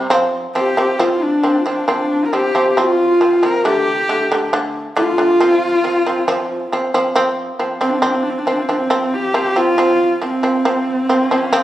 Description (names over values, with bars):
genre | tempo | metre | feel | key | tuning
mongolian traditional, Mongolian folk | 68 BPM | 4/4 | straight | unclear | A4 = 439 Hz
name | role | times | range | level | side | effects
shamisen | arpeggios | 0.0-11.6 s | D3 to C4 | -17 LUFS | right 1 dB | none
rich horsehead fiddle | melody | 0.6-11.6 s | C4 to Bb4 | -17 LUFS | right 1 dB | none
hollow low xiao | second line | 0.6-6.7 s | D4 to G4 | -19 LUFS | left 3 dB | none
room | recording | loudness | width
moderate recital hall reverb, RT60 1.3 s | recorded on a phone in the room, club reverb | -14 LUFS | side -13 dB against mid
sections
0.0-7.2 A section; 7.2-11.6 B section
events
none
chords
0.1 F5; 3.6 D5; 5.4 F5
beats
| 0.11 1.00 1.88 2.77 | 3.65 4.53 5.41 6.29 | 7.16 8.04 8.91 9.79 | 10.66 11.54